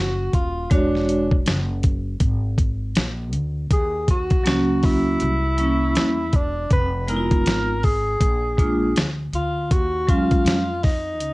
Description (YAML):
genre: hip hop, jazz-hop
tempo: 80 BPM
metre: 4/4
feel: swing 61% on 16ths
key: Eb minor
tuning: A4 = 440 Hz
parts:
  - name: breathy tenor saxophone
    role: melody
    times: 0.0-11.3 s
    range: D4 to Cb5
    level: -25 LUFS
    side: equal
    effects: cassette tape, plate reverb
  - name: upright bass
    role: bass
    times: 0.0-11.3 s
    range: Eb1 to F2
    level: -26 LUFS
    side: equal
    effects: none
  - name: dusty soul sampler-style drum kit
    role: drums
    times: 0.3-11.3 s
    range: hi-hat, kick drum, snare drum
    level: -20 LUFS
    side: equal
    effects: cassette tape
  - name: vibraphone with hard mallets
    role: accompaniment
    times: 0.7-10.6 s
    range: Gb3 to C#5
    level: -22 LUFS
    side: right 1 dB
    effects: cassette tape, plate reverb
room: light reverb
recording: home recording on cassette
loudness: -18 LUFS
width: side -21 dB against mid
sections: 0.0-11.3 A section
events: none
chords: 0.0 Ab7(no3) (rootless); 0.7 E13; 3.7 Ebm7; 5.2 C7b9; 6.7 Fm7b5; 8.2 Bb7; 9.7 Ebm11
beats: | 0.71 1.46 2.21 2.96 | 3.71 4.46 5.21 5.96 | 6.71 7.46 8.21 8.96 | 9.71 10.46 11.21